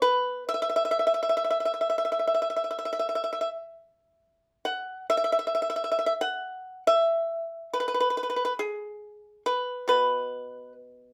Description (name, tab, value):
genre	chinese traditional, Chinese solo plucked strings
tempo	59-70 BPM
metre	4/4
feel	rubato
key	unclear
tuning	A4 = 443 Hz
part	pipa	solo	0.0-11.1 s	B2 to F#5	-27 LUFS	equal	none
room	moderate studio reverb, RT60 0.6 s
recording	band playing live in one room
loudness	-27 LUFS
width	mono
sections	0.0-4.6 A section; 4.6-11.1 B section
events	none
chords	none